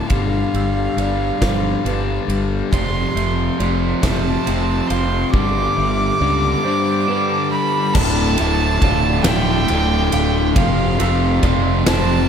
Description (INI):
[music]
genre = post-rock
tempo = 46 BPM (dotted quarters)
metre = 6/8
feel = straight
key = D dorian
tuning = A4 = 440 Hz
[part]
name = rich violin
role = melody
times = 0.0-12.3 s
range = F5 to D6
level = -23 LUFS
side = right 2 dB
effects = tape echo
[part]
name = clean electric guitar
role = arpeggios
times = 0.0-12.3 s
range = D2 to F4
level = -27 LUFS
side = left 1 dB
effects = analog chorus, tape echo
[part]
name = felt-muted upright piano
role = arpeggios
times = 0.0-12.3 s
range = B4 to E6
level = -32 LUFS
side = right 4 dB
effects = tape echo
[part]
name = distorted electric guitar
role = riff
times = 0.0-12.3 s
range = D2 to G3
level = -22 LUFS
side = left 8 dB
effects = distortion
[part]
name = fuzz fingered electric bass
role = bass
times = 0.1-12.3 s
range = D1 to C#2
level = -20 LUFS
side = equal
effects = overdrive
[part]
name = huge arena drum kit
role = drums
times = 0.1-12.1 s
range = crash cymbal, kick drum, ride cymbal, snare drum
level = -22 LUFS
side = equal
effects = none
[part]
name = overdriven semi-hollow guitar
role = riff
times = 2.7-12.3 s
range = D2 to G3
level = -24 LUFS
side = right 10 dB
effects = none
[sound]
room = moderate lush hall reverb, RT60 3.2 s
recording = dreamy mix soaked in reverb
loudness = -15 LUFS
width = side -7 dB against mid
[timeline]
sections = 0.0-8.0 A section; 8.0-12.3 B section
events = build-up 0.0-8.0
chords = 0.1 G7; 2.7 F; 5.3 G7; 8.0 Dm; 10.6 F